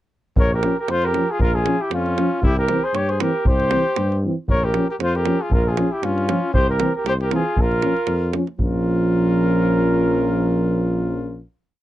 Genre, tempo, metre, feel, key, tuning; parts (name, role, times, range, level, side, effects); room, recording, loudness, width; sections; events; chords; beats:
balkan folk, Balkan brass band; 117 BPM; 2/4; swing 56% on 16ths; Bb dorian sharp4; A4 = 440 Hz
mellow flugelhorn; melody; 0.4-11.4 s; F4 to Db5; -23 LUFS; right 2 dB
clear trumpet; second line; 0.4-11.4 s; Db4 to Bb4; -28 LUFS; left 5 dB
warm tuba; bass; 0.4-11.4 s; Bb1 to G2; -23 LUFS; equal
davul; percussion; 0.4-8.8 s; -22 LUFS; equal
dark euphonium; accompaniment; 0.6-11.4 s; E3 to F3; -23 LUFS; right 3 dB
mellow French horn; accompaniment; 0.6-11.4 s; C4 to Db4; -24 LUFS; left 5 dB
little or no reverb; dry, close 1970s-style studio recording; -17 LUFS; side -14 dB against mid
0.4-8.6 A section; 8.6-10.7 final chord
0.4 Bbm; 2.4 C; 4.5 Bbm; 6.5 C; 7.6 Bbm
| 0.37 0.89 | 1.41 1.92 | 2.44 2.95 | 3.46 3.98 | 4.49 5.00 | 5.52 6.03 | 6.54 7.05 | 7.57 8.08 | 8.60 9.11 | 9.63 10.14